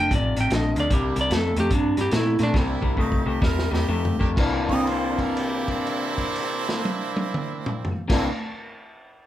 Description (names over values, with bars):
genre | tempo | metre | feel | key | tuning
electric blues shuffle | 121-151 BPM | 4/4 | swing 64% on 8ths | C mixolydian | A4 = 440 Hz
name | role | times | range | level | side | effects
clean lap steel guitar | melody | 0.0-8.3 s | C4 to G5 | -27 LUFS | right 2 dB | none
electric guitar through a small old amp | riff | 0.0-8.3 s | F2 to D4 | -26 LUFS | left 3 dB | spring reverb
vintage muted fingered electric bass | bass | 0.0-8.3 s | A1 to Bb2 | -27 LUFS | equal | none
vintage drum kit | drums | 0.1-8.2 s | crash cymbal, hi-hat, kick drum, snare drum, toms | -26 LUFS | equal | none
bright horn section | stabs | 0.8-8.3 s | A3 to G4 | -32 LUFS | right 3 dB | none
bright harmonica | second line | 3.0-8.3 s | C4 to Eb5 | -32 LUFS | right 4 dB | overdrive
room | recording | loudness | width
light reverb | band playing live in one room | -21 LUFS | side -12 dB against mid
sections
0.0-4.4 A section; 4.4-8.3 B section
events
slowing down 0.9-4.4; drum fill 2.5-4.4; held note 4.4-8.0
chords
0.0 F9; 0.9 C9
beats
0.11 0.51 | 0.91 1.30 1.71 2.12 | 2.54 2.97 3.42 3.88 | 4.37 4.86 5.36 5.86 | 6.35 6.85 7.34 7.84